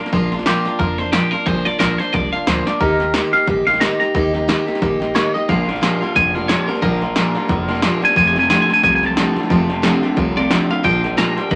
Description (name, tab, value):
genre	rockabilly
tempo	179 BPM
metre	4/4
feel	swing 58% on 8ths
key	Bb major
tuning	A4 = 440 Hz
part	twangy electric guitar	melody	0.0-11.6 s	G4 to Bb5	-21 LUFS	equal	phaser
part	picked steel-string acoustic guitar	accompaniment	0.0-11.6 s	F2 to G4	-21 LUFS	equal	none
part	upright bass	bass	0.1-11.6 s	F1 to F2	-30 LUFS	equal	none
part	punchy analog drum machine	drums	0.1-11.6 s	hi-hat, kick drum, snare drum	-24 LUFS	equal	overdrive
part	electric guitar through a small old amp	riff	5.5-11.6 s	F2 to Bb3	-26 LUFS	equal	none
room	light reverb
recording	none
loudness	-17 LUFS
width	mono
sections	0.0-11.6 A section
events	clean electric guitar solo 0.0-11.6; drum fill 2.6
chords	0.0 Bb; 2.8 Eb; 5.5 Bb; 8.2 F; 10.8 Bb